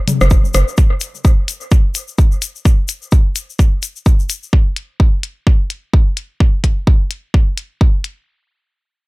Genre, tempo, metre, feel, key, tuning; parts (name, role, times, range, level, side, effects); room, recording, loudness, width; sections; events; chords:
minimal techno; 128 BPM; 4/4; swing 58% on 16ths; A4 = 440 Hz
electronic hi-hat; drums; 0.1-8.2 s; -23 LUFS; left 4 dB
booming analog drum machine; percussion; 0.1-0.7 s; congas, rim click, toms; -19 LUFS; left 2 dB; dub echo
egg shaker; percussion; 0.1-4.5 s; -26 LUFS; left 7 dB
hollow knocking FM bass; bass; 0.2-0.6 s; F#1; -12 LUFS; equal; sidechain pumping
electronic kick drum; drums; 0.3-7.9 s; -11 LUFS; equal
little or no reverb; echo-heavy mix; -13 LUFS; side -23 dB against mid
0.0-8.3 A section